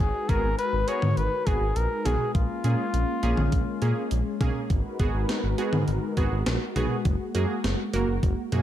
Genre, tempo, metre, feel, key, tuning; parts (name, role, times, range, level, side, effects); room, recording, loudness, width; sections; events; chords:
synth-pop; 102 BPM; 4/4; straight; G# dorian; A4 = 441 Hz
trumpet with bucket mute; melody; 0.0-4.1 s; E#4 to C#5; -29 LUFS; left 3 dB; digital delay
warm analog pad; sustained chords; 0.0-8.6 s; G#3 to B4; -32 LUFS; left 2 dB; chorus
smooth synth bass; bass; 0.0-8.6 s; F#1 to A#2; -26 LUFS; equal
gated 80s digital drum machine; drums; 0.0-8.6 s; hi-hat, kick drum, snare drum, toms; -27 LUFS; equal; gated reverb, gated reverb snare, overdrive
funky polysynth comp; accompaniment; 0.3-8.6 s; A#3 to A#4; -32 LUFS; right 3 dB; chorus
light reverb; dark, warm production; -23 LUFS; side -12 dB against mid
0.0-8.6 A section
0.0 G#m7; 2.3 A#m7; 4.7 G#m7; 7.1 F#add9